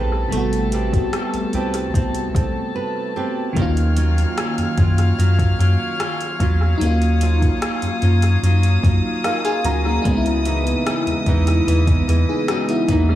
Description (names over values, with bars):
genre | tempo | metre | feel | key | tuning
contemporary R&B | 74 BPM | 4/4 | straight | unclear | A4 = 440 Hz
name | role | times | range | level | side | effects
FM electric piano with soft pad layer | accompaniment | 0.0-13.2 s | C3 to A#5 | -23 LUFS | left 1 dB | chorus, analog delay
dark studio string section | sustained chords | 0.0-13.2 s | A4 to E#6 | -27 LUFS | left 3 dB | none
nylon-string guitar | arpeggios | 0.0-13.2 s | C#3 to B4 | -26 LUFS | right 5 dB | analog delay
rubbery square bass | bass | 0.0-13.2 s | A1 to F#2 | -18 LUFS | equal | none
smooth R&B drum kit | drums | 0.3-13.1 s | hi-hat, kick drum, rim click | -23 LUFS | equal | analog delay
room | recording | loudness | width
light reverb, digital ambience | echo-heavy mix, small room ambience | -16 LUFS | side -13 dB against mid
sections
0.0-13.2 A section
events
break 2.8-3.6; FM electric piano fill 8.8-10.1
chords
0.0 Am9; 3.6 D#m9; 10.1 C#m9